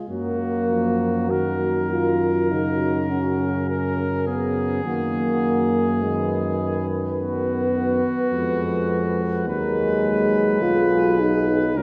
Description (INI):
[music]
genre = classical, hymn-like piece for brass band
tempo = 52 BPM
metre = 4/4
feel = rubato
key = F# major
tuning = A4 = 441 Hz
[part]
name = dark French horn section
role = second line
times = 0.0-11.8 s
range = F#4 to B4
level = -31 LUFS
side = equal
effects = none
[part]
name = mellow trombone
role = accompaniment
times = 0.0-11.8 s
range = C#3 to G#3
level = -33 LUFS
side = equal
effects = none
[part]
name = clear cornet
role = melody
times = 0.1-11.8 s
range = F#4 to B4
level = -32 LUFS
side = equal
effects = none
[part]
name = mellow euphonium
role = accompaniment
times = 0.1-11.8 s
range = G#3 to F#4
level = -25 LUFS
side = equal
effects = none
[part]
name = warm tuba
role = bass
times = 0.1-11.8 s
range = B1 to F#2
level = -28 LUFS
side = equal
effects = none
[sound]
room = wet church reverb, RT60 3.1 s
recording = recorded in a church or concert hall, faint mains hum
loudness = -22 LUFS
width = mono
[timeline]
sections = 0.1-11.8 A section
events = none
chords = 0.1 F#; 4.8 G#m7/F#; 9.5 G#m7/D#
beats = | 0.09 1.30 2.52 3.69 | 4.85 6.00 7.18 8.33 | 9.47 10.62 11.77